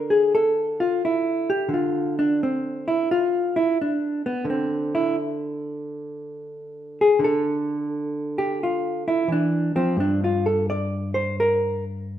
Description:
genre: solo jazz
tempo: 87 BPM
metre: 4/4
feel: swing 67% on 8ths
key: D minor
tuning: A4 = 442 Hz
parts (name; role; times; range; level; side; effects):
- hollow-body jazz guitar; solo; 0.0-12.2 s; G2 to D5; -21 LUFS; equal; none
room: wet stone room reverb, RT60 1.2 s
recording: band playing live in one room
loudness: -21 LUFS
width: side -11 dB against mid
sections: 0.0-12.2 A section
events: hollow-body jazz guitar solo 0.0-12.2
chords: 0.0 Dmadd9; 10.0 Gm

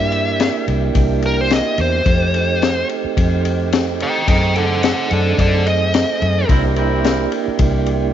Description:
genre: straight-eighth soul blues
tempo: 108 BPM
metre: 4/4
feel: swing 55% on 16ths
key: unclear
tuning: A4 = 440 Hz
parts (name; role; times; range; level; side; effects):
- smooth overdriven lead guitar; melody; 0.0-6.5 s; A4 to G5; -20 LUFS; left 1 dB; none
- tonewheel organ; accompaniment; 0.0-8.1 s; A3 to Ab4; -21 LUFS; right 9 dB; slow rotary speaker, overdrive
- vintage muted fingered electric bass; bass; 0.0-8.1 s; C2 to G2; -19 LUFS; left 1 dB; none
- crunchy breakbeat drum kit; drums; 0.1-8.0 s; kick drum, ride cymbal, snare drum; -20 LUFS; left 3 dB; none
- warm horn section; sustained chords; 6.5-7.3 s; C4 to Bb4; -24 LUFS; left 1 dB; none
room: light reverb, small room ambience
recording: 1960s-style stereo, nothing above 7.7 kHz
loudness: -14 LUFS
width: side -10 dB against mid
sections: 0.0-8.1 A section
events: lead electric guitar solo 0.0-8.1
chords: 0.0 C7; 2.1 F7; 4.3 F#dim7; 6.5 C7

